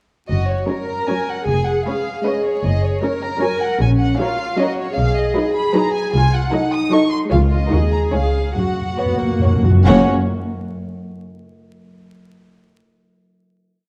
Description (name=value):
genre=quick classical-period movement for symphony orchestra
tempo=137-158 BPM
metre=3/4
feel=rubato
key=F# major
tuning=A4 = 440 Hz
part: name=dark chamber violin section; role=melody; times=0.3-10.1 s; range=C#5 to Eb6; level=-27 LUFS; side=equal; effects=none
part: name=clear chamber double bass section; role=bass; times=0.3-10.1 s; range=E#1 to F#2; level=-21 LUFS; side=equal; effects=none
part: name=warm chamber cello section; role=bass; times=0.3-10.1 s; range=F#2 to A#4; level=-24 LUFS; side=equal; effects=none
part: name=warm chamber violin section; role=second line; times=0.7-10.1 s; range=F#4 to Eb5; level=-28 LUFS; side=equal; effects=none
part: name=dark chamber viola section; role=accompaniment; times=0.7-10.1 s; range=F#3 to F#4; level=-25 LUFS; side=equal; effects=none
part: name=timpani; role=percussion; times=7.3-10.0 s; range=F#2 to C#3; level=-21 LUFS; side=equal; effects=none
room=moderate recital hall reverb, RT60 1.8 s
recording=dark, warm production, vinyl crackle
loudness=-18 LUFS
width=mono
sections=0.3-9.9 theme; 9.9-11.1 final chord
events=timpani fill 8.6-9.9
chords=0.3 F#; 1.5 C#7/E#; 2.6 F#; 3.8 F#/A#; 5.0 G#m7/B; 6.1 Cdim7; 7.3 C#; 7.7 D#m; 8.1 C#; 8.6 F#